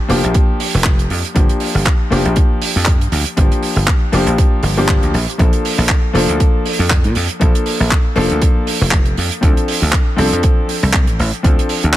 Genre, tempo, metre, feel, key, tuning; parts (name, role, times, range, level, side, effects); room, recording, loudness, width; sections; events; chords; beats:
nu-disco, nu disco; 119 BPM; 4/4; swing 55% on 16ths; G minor; A4 = 440 Hz
clear grand piano; accompaniment; 0.0-12.0 s; F3 to A4; -19 LUFS; left 2 dB; sidechain pumping, digital delay
dry thumbed slap bass; bass; 0.1-11.9 s; F1 to Bb2; -16 LUFS; equal; sidechain pumping
damped 70s drum kit; drums; 0.1-12.0 s; handclaps, hi-hat; -20 LUFS; right 3 dB
electronic kick drum; drums; 0.3-11.6 s; -14 LUFS; equal
little or no reverb; -12 LUFS; side -14 dB against mid
0.0-12.0 A section
0.0 Gm7; 5.1 Bbmaj7; 9.4 Dm7
0.35 0.85 | 1.36 1.86 2.37 2.87 | 3.38 3.88 4.38 4.89 | 5.39 5.90 6.40 6.90 | 7.41 7.91 8.42 8.92 | 9.43 9.93 10.43 10.94 | 11.44 11.95